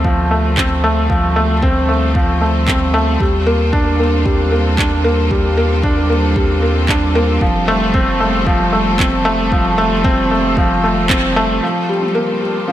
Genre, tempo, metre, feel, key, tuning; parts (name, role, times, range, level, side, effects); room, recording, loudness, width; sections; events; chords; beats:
piano and strings electronica; 114 BPM; 4/4; straight; A4 = 442 Hz
rich symphonic string section; sustained chords; 0.0-12.7 s; G3 to A4; -22 LUFS; equal; sidechain pumping
felt-muted upright piano; riff; 0.0-12.7 s; F3 to D4; -15 LUFS; equal; low-pass filter, digital delay
warm sub bass; bass; 0.0-11.6 s; F1 to Eb2; -18 LUFS; equal; sidechain pumping
electronic kick drum; drums; 0.0-11.2 s; -18 LUFS; equal
organic electronic drum kit; drums; 0.6-12.7 s; handclaps, toms; -21 LUFS; right 1 dB; overdrive, low-pass filter on snare, low-pass filter on toms
light reverb, small room ambience; -12 LUFS; side -12 dB against mid
0.0-11.6 A section; 11.6-12.7 B section
fade-in on string section 0.0-11.6; band accent 11.1
0.0 Dm7; 3.2 Ebmaj7; 7.4 F; 11.6 Gm7
0.05 0.57 | 1.10 1.63 2.15 2.68 | 3.21 3.73 4.26 4.79 | 5.31 5.84 6.36 6.89 | 7.42 7.94 8.47 9.00 | 9.52 10.05 10.57 11.10 | 11.63 12.15 12.68